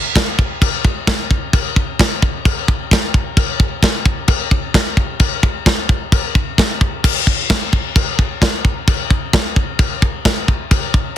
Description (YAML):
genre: metal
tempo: 131 BPM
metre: 4/4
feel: straight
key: none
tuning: none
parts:
  - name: tight metal drum kit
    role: drums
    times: 0.2-11.1 s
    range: china cymbal, crash cymbal, kick drum, snare drum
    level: -14 LUFS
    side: equal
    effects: none
room: little or no reverb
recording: dense, heavily limited modern master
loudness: -14 LUFS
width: side -11 dB against mid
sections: 0.0-11.2 A section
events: none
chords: none